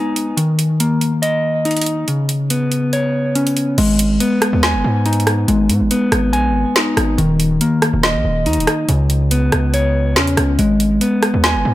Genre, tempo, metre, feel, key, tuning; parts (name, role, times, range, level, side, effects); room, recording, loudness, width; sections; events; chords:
hip hop, drill; 141 BPM; 4/4; half-time; G# minor; A4 = 441 Hz
mellow electric guitar; arpeggios; 0.0-11.7 s; C#3 to G#5; -16 LUFS; left 1 dB; warbly pitch drift, digital delay
drill drum kit; drums; 0.2-11.5 s; crash cymbal, hi-hat, rim click, snare drum; -19 LUFS; right 1 dB
distorted 808-style bass; bass; 3.8-11.7 s; D#1 to G#2; -18 LUFS; right 1 dB; distortion
little or no reverb; -14 LUFS; side -15 dB against mid
0.0-3.8 A section; 3.8-11.7 B section
0.4 D#5; 2.1 Bsus2/C#; 3.8 G#m; 7.2 D#5; 8.9 C#7(no3); 10.6 G#m